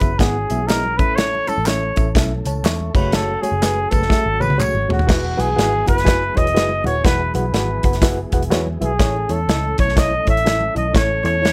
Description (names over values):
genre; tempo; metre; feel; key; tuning
uptempo 1960s-style soul; 123 BPM; 4/4; swing 62% on 8ths; E major; A4 = 440 Hz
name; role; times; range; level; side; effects
dark trumpet; melody; 0.0-11.5 s; F#4 to E5; -23 LUFS; equal; none
reed electric piano; accompaniment; 0.0-11.5 s; A2 to C#6; -27 LUFS; equal; fast tremolo
mellow tonewheel organ; sustained chords; 0.0-11.5 s; E3 to A4; -34 LUFS; equal; none
vintage muted picked electric bass; bass; 0.0-11.5 s; D#1 to E2; -25 LUFS; equal; none
natural country drum kit; drums; 0.0-11.5 s; crash cymbal, hi-hat, kick drum, snare drum, toms; -21 LUFS; equal; none
congas; percussion; 0.0-11.5 s; none; -36 LUFS; equal; none
tambourine and handclaps; percussion; 0.0-4.7 s; none; -35 LUFS; equal; none
room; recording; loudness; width
little or no reverb; none; -18 LUFS; mono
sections
0.0-5.1 A section; 5.1-11.5 B section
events
trumpet solo 0.0-5.1; drum fill 4.1-5.1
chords
0.0 E; 0.9 A; 2.9 F#madd9; 5.1 Eadd9; 9.0 A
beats
0.19 0.68 | 1.17 1.66 2.15 2.64 | 3.13 3.62 4.11 4.59 | 5.08 5.57 6.06 6.55 | 7.04 7.53 8.02 8.50 | 8.99 9.48 9.97 10.46 | 10.95 11.44